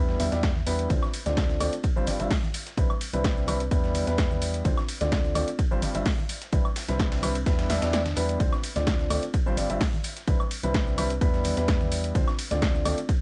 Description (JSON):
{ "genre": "piano house", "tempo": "128 BPM", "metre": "4/4", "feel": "swing 53% on 16ths", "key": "D dorian", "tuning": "A4 = 440 Hz", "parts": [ { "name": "warm upright piano", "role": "riff", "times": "0.0-13.0 s", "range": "G2 to E5", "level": "-32 LUFS", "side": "equal", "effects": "sidechain pumping, low-pass filter, cassette tape, tape echo" }, { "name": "organ-like FM bass", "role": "bass", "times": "0.0-12.9 s", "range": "G1 to E2", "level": "-32 LUFS", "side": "equal", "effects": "sidechain pumping" }, { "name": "dusty soul sampler-style drum kit", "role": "drums", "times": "0.1-13.2 s", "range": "hi-hat, ride cymbal, snare drum", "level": "-43 LUFS", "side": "equal", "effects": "overdrive, sidechain pumping on cymbals, high-pass filter on cymbals, cassette tape, high-pass filter on snare, sidechain pumping on hats, high-pass filter on hats" }, { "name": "tambourine and congas", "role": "percussion", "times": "0.1-13.2 s", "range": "none", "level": "-42 LUFS", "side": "equal", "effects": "none" }, { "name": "punchy analog drum machine", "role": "drums", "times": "0.2-13.2 s", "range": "hi-hat, shaker, snare drum, woodblock", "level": "-34 LUFS", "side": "equal", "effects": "cassette tape" }, { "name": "electronic kick drum", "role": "drums", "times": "0.4-13.2 s", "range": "none", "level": "-28 LUFS", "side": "equal", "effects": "cassette tape" }, { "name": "swell", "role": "sound effects", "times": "7.8-8.4 s", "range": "none", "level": "-41 LUFS", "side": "equal", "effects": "none" } ], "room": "light reverb", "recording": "home recording on cassette, nothing above 10.8 kHz", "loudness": "-26 LUFS", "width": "mono", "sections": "0.0-13.2 A section", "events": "kick drops out 7.9-8.4", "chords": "0.0 Em7; 0.9 Dm7; 1.8 G7sus4; 2.5 Cmaj9; 3.7 Em7; 4.7 Dm7; 5.6 G7sus4; 6.3 Cmaj9; 7.5 Em7; 8.4 Dm7; 9.3 G7sus4; 10.0 Cmaj9; 11.2 Em7; 12.2 Dm7" }